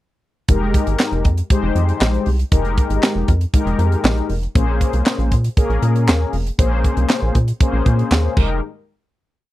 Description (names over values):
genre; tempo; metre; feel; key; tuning
early-eighties boogie funk; 118 BPM; 4/4; straight; F minor; A4 = 440 Hz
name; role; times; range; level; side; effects
mellow synth brass; accompaniment; 0.5-8.6 s; Ab3 to C5; -22 LUFS; left 4 dB; chorus
rubbery square bass; bass; 0.5-8.6 s; F1 to Bb2; -18 LUFS; equal; none
tight funk drum kit; drums; 0.5-8.5 s; crash cymbal, handclaps, hi-hat, kick drum, snare drum; -16 LUFS; equal; none
room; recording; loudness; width
little or no reverb; dry, close 1970s-style studio recording; -15 LUFS; side -16 dB against mid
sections
0.5-8.6 verse; 8.6-9.5 final hit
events
none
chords
0.5 Fm11; 4.6 Bbm9; 8.4 Fm11; 8.6 N.C.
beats
| 0.49 0.99 1.50 2.01 | 2.52 3.03 3.54 4.05 | 4.55 5.06 5.57 6.08 | 6.59 7.10 7.61 8.11